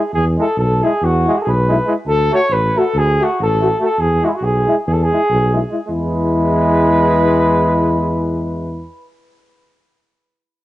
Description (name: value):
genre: balkan folk, Balkan brass band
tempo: 282 BPM (eighths)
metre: 9/8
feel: straight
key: E mixolydian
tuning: A4 = 440 Hz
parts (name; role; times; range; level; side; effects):
- dark cornet; melody; 0.0-8.9 s; E4 to C#5; -17 LUFS; equal; cassette tape, plate reverb
- warm euphonium; accompaniment; 0.0-8.9 s; E4 to F#4; -20 LUFS; left 2 dB; cassette tape
- dark tuba; bass; 0.1-8.9 s; A1 to E2; -17 LUFS; equal; none
- bright trombone; accompaniment; 0.4-8.8 s; G#3 to A3; -23 LUFS; right 3 dB; cassette tape
room: moderate studio reverb, RT60 0.6 s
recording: home recording on cassette, nothing above 10.7 kHz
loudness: -13 LUFS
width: side -15 dB against mid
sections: 0.0-5.9 A section; 5.9-9.7 B section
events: none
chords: 0.0 E; 2.1 D; 4.0 E